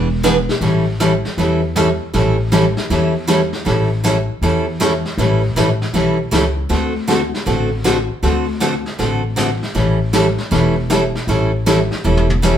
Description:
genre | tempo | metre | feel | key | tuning
country, western swing | 158 BPM | 4/4 | swing 65% on 8ths | A mixolydian | A4 = 437 Hz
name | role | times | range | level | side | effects
picked steel-string acoustic guitar | accompaniment | 0.0-12.5 s | D3 to A4 | -16 LUFS | equal | none
upright bass | bass | 0.0-12.6 s | E1 to E2 | -19 LUFS | left 1 dB | none
vintage brush drum kit | drums | 0.2-12.6 s | brushed snare drum, hi-hat, snare drum, toms | -22 LUFS | left 1 dB | none
room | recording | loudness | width
wet studio reverb, RT60 0.9 s | band playing live in one room | -14 LUFS | side -9 dB against mid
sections
0.6-12.6 A section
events
drum fill 12.0-12.4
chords
0.0 E7; 0.6 A7; 6.7 D7; 9.8 A7

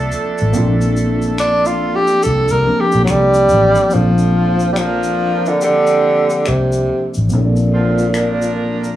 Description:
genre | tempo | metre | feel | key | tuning
R&B, neo-soul | 71 BPM | 4/4 | swing 63% on 16ths | Bb major | A4 = 440 Hz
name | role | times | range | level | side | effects
tine electric piano | accompaniment | 0.0-9.0 s | F3 to A4 | -20 LUFS | left 1 dB | medium stereo tremolo, cassette tape
warm horn section | stabs | 0.0-9.0 s | D3 to Bb4 | -24 LUFS | right 4 dB | cassette tape, plate reverb
vintage muted fingered electric bass | bass | 0.0-8.8 s | A1 to C2 | -17 LUFS | equal | none
tube shaker and finger snaps | percussion | 0.1-9.0 s | none | -30 LUFS | left 4 dB | none
breathy tenor saxophone | melody | 1.4-9.0 s | Bb2 to Bb4 | -14 LUFS | equal | cassette tape, plate reverb
room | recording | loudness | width
moderate studio reverb, RT60 0.5 s | home recording on cassette, small room ambience | -12 LUFS | side -13 dB against mid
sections
0.0-3.9 A section; 3.9-9.0 B section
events
tenor saxophone solo 0.0-3.9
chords
0.0 Bbmaj9

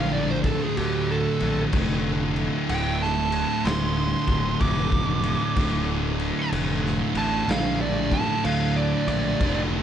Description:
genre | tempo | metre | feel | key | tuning
stoner and doom metal | 63 BPM | 4/4 | swing 66% on 8ths | D minor | A4 = 439 Hz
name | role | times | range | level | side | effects
fuzz lead guitar | melody | 0.0-9.6 s | G4 to D6 | -29 LUFS | right 4 dB | distortion, tape echo
thick fuzz guitar | riff | 0.0-9.8 s | D2 to D3 | -28 LUFS | left 8 dB | distortion
thick fuzz guitar | riff | 0.0-9.8 s | D2 to D3 | -27 LUFS | right 8 dB | distortion
fuzz picked electric bass | bass | 0.0-9.8 s | D1 to D2 | -28 LUFS | equal | overdrive
raw garage drum kit | drums | 0.4-9.7 s | crash cymbal, kick drum, snare drum | -29 LUFS | left 1 dB | none
room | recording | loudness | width
studio reverb | dark, warm production, nothing above 10.9 kHz | -21 LUFS | side -9 dB against mid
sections
0.0-9.8 A section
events
lead electric guitar solo 0.0-9.8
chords
0.0 Dm

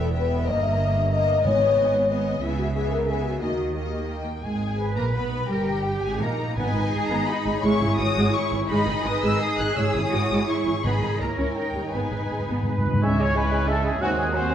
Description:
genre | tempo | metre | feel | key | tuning
classical, dramatic, fast romantic movement for symphony orchestra | 162-187 BPM | 3/4 | straight | G# minor | A4 = 440 Hz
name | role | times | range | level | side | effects
warm symphonic violin section | melody | 0.0-14.5 s | D#5 to F#6 | -31 LUFS | left 5 dB | none
warm symphonic violin section | second line | 0.0-14.5 s | E4 to E5 | -32 LUFS | left 4 dB | none
rich symphonic viola section | accompaniment | 0.0-14.5 s | C#3 to E4 | -28 LUFS | right 1 dB | none
dark French horn section | sustained chords | 0.0-4.1, 13.0-14.1 s | G#3 to E5 | -24 LUFS | left 4 dB | none
rich symphonic cello section | bass | 0.0-14.5 s | D#2 to B4 | -30 LUFS | right 2 dB | none
warm symphonic double bass section | bass | 0.0-14.5 s | E1 to D#2 | -28 LUFS | right 2 dB | none
timpani | percussion | 1.4-1.9, 6.6-13.0 s | G#2 | -29 LUFS | equal | none
clear trumpet section | stabs | 12.7-14.5 s | F#4 to E5 | -27 LUFS | equal | none
clear oboe | second line | 13.0-14.5 s | C#5 to F#5 | -29 LUFS | equal | none
mellow hollow silver concert flute | second line | 13.0-14.5 s | G#5 | -32 LUFS | left 1 dB | none
mellow bassoon | accompaniment | 13.0-14.5 s | F#3 to G#3 | -30 LUFS | right 1 dB | none
room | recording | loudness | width
wet recital hall reverb, RT60 1.5 s | dark, warm production | -21 LUFS | side -9 dB against mid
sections
0.0-4.4 A section; 4.4-13.0 B section; 13.0-14.5 C section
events
timpani fill 11.9-13.0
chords
0.5 D#/G; 1.4 G#m; 2.4 C#m7; 3.4 D#; 4.4 G#m; 5.5 D#/G; 6.6 G#m; 7.6 C#m/G#; 8.7 G#m; 9.8 C#m/G#; 10.8 G#m; 11.2 A#dim; 11.6 D#7; 11.9 G#m; 13.0 C#m; 14.0 G#7/D#

